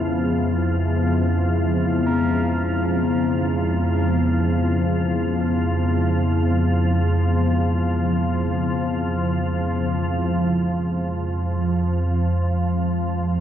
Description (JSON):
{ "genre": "dark ambient drone", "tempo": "free time", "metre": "none", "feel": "none", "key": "unclear", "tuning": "A4 = 440 Hz", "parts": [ { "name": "deep dark ambient pad", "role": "sustained chords", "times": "0.0-13.4 s", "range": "Db3 to Ab4", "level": "-24 LUFS", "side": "left 2 dB", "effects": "chorus, built-in reverb" }, { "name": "tubular bells", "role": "arpeggios", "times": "0.0-10.2 s", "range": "Fb4 to Bb4", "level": "-37 LUFS", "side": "right 2 dB", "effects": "diffuse ambient delay" }, { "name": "organ-like drone", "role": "drone", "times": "0.0-13.4 s", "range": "F2 to F3", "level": "-20 LUFS", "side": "right 1 dB", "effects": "ensemble chorus, built-in reverb" } ], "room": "wet huge ambient reverb, RT60 7.2 s", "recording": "dark, warm production", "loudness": "-19 LUFS", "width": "side -10 dB against mid", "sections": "0.0-10.2 A section; 10.2-13.4 B section", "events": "fade-out on tubular bells 0.0-10.2; filter sweep on synth drone 10.2-13.4", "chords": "0.0 Dbm7; 10.2 Fm" }